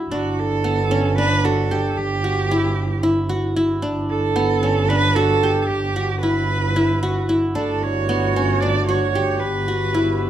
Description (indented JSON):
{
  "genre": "contemporary instrumental, chamber music in an uneven meter",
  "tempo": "226 BPM (eighths)",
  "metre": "7/8",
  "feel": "straight",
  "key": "unclear",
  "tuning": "A4 = 440 Hz",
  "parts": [
    { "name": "mellow woodwind section", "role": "sustained chords", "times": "0.0-0.1, 7.6-10.3 s", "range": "D3 to G4", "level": "-26 LUFS", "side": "left 2 dB", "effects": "none" },
    { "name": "qanun", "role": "arpeggios", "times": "0.0-10.3 s", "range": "B3 to G4", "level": "-22 LUFS", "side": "left 1 dB", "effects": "none" },
    { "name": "rich cello", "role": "melody", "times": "0.1-10.3 s", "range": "F#4 to D5", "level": "-22 LUFS", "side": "right 4 dB", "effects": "none" },
    { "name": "warm double bass", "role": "bass", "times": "0.1-10.3 s", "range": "G1", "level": "-22 LUFS", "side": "right 2 dB", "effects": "none" }
  ],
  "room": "light reverb",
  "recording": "close, detailed microphones",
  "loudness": "-17 LUFS",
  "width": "side -11 dB against mid",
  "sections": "0.1-10.3 A section",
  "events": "none",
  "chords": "0.1 D/G; 2.0 Emadd9/G; 3.8 D/G; 5.7 Gmaj7; 7.6 D/G; 9.4 Gmaj7"
}